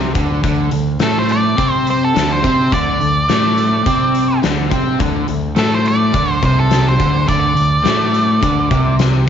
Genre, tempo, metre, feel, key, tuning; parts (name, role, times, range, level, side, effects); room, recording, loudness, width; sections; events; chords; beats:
blues rock power trio and southern rock; 105 BPM; 4/4; straight; A4 = 439 Hz
crunchy overdriven guitar; riff; 0.0-9.3 s; C3 to C4; -16 LUFS; equal
growling fingered electric bass; bass; 0.0-9.2 s; C2 to C3; -21 LUFS; right 1 dB; overdrive
oversized low-tuned drum kit; drums; 0.1-9.1 s; hi-hat, kick drum, snare drum; -20 LUFS; left 3 dB
octave-fuzz lead guitar; melody; 1.0-9.0 s; A4 to D5; -17 LUFS; right 1 dB; distortion, slapback echo
light reverb, small room ambience; 1960s-style stereo, nothing above 7.8 kHz; -12 LUFS; side -8 dB against mid
0.0-9.3 A section
0.0 D5
| 0.44 1.01 1.58 2.15 | 2.72 3.29 3.86 4.43 | 5.00 5.57 6.14 6.71 | 7.28 7.85 8.42 8.99